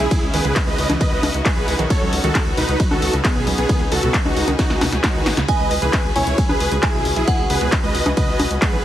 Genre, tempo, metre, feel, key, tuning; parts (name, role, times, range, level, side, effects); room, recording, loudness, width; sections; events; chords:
uplifting trance; 134 BPM; 4/4; straight; A4 = 440 Hz
supersaw chords; melody; 0.0-8.8 s; B3 to D#5; -22 LUFS; right 1 dB; cassette tape, sidechain pumping, ping-pong delay
warm chamber string section; sustained chords; 0.0-8.8 s; C#3 to B4; -27 LUFS; left 2 dB; sidechain pumping
tight sequencer bass; bass; 0.0-8.8 s; G#1 to C#2; -24 LUFS; equal; sidechain pumping
punchy analog drum machine; drums; 0.0-8.7 s; congas, handclaps, hi-hat, ride cymbal, snare drum; -23 LUFS; left 1 dB
wide unison pluck; arpeggios; 0.1-8.8 s; B2 to G#3; -27 LUFS; right 3 dB; cassette tape, sidechain pumping, ping-pong delay
electronic kick drum; drums; 0.1-8.7 s; -20 LUFS; equal
glassy synth bell; second line; 5.5-8.8 s; F#5 to G#5; -26 LUFS; right 2 dB; chorus, phaser, ping-pong delay
light reverb, digital ambience; heavily compressed radio sound; -16 LUFS; side -12 dB against mid
0.0-8.8 A section
drum fill 4.6-5.5
0.0 C#madd9; 1.9 Badd9; 5.5 E6